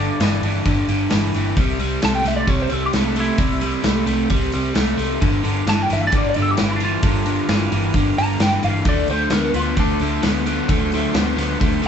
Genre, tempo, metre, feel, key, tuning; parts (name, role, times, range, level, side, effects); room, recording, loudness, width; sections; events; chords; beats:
blues rock power trio and southern rock; 132 BPM; 4/4; straight; G mixolydian; A4 = 440 Hz
lightly driven lead guitar; melody; 0.0-10.2 s; D4 to A#5; -24 LUFS; equal; wah
overdriven electric guitar; riff; 0.0-11.9 s; G2 to B3; -21 LUFS; equal; spring reverb
vintage muted picked electric bass; bass; 0.0-11.9 s; G1 to D2; -24 LUFS; equal
big rock drum kit; drums; 0.2-11.9 s; hi-hat, kick drum, snare drum; -22 LUFS; equal
overdriven tonewheel organ; sustained chords; 5.2-11.9 s; F#3 to C5; -31 LUFS; right 2 dB; slow rotary speaker
moderate studio ambience, RT60 0.5 s; band playing live in one room, nothing above 8.0 kHz; -16 LUFS; side -8 dB against mid
0.0-11.9 A section
0.0 G5; 1.6 C; 5.2 G7#9; 8.9 D7#9
0.20 0.66 1.11 | 1.57 2.02 2.48 2.94 | 3.39 3.85 4.30 4.76 | 5.21 5.67 6.13 6.58 | 7.04 7.49 7.95 8.40 | 8.86 9.32 9.78 10.23 | 10.69 11.15 11.61